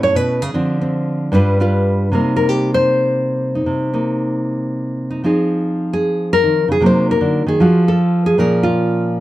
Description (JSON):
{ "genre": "solo jazz", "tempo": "153 BPM", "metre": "4/4", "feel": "swing 66% on 8ths, rubato", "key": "C minor, F minor from 5.2 s", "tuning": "A4 = 439 Hz", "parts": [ { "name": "nylon-string guitar", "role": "solo", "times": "0.0-9.2 s", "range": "G2 to C#5", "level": "-14 LUFS", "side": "equal", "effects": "none" } ], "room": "light reverb", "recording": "none", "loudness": "-14 LUFS", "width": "side -15 dB against mid", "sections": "0.0-5.2 A section; 5.2-9.2 B section", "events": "nylon-string guitar solo 5.2-9.2", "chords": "0.0 A; 0.5 Dm7b5; 1.3 G7; 2.1 Cm7; 5.2 Fm7; 6.8 Cm7b5; 7.6 F; 8.4 Bbm7" }